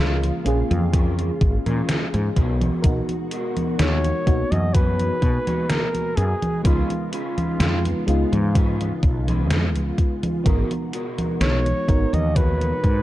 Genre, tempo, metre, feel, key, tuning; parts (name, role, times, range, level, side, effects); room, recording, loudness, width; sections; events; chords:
vaporwave; 63 BPM; 4/4; straight; G# dorian; A4 = 439 Hz
mellow flugelhorn; melody; 0.0-13.0 s; E#4 to D#5; -28 LUFS; equal; tape echo
mellow FM electric piano; accompaniment; 0.0-13.0 s; G#3 to A#4; -28 LUFS; equal; lush chorus, analog delay
soft string machine; sustained chords; 0.0-13.0 s; B2 to G#4; -34 LUFS; equal; ensemble chorus, vintage 12-bit sampler grit
electric guitar at the edge of break-up; riff; 0.0-12.7 s; B3 to G#5; -32 LUFS; left 2 dB; ensemble chorus, analog delay
woody fretless electric bass; bass; 0.0-13.0 s; G#1 to B2; -22 LUFS; equal
gated 80s digital drum machine; drums; 0.2-13.0 s; congas, hi-hat, snare drum; -25 LUFS; equal; gated reverb, gated reverb snare, overdrive
electronic kick drum; drums; 0.9-13.0 s; -19 LUFS; equal; overdrive
little or no reverb; dark, warm production; -19 LUFS; side -15 dB against mid
0.0-13.0 A section
clean electric guitar fill 1.4-2.8
0.0 A#m7; 2.4 G#m9/B; 6.6 C#7; 10.5 G#m9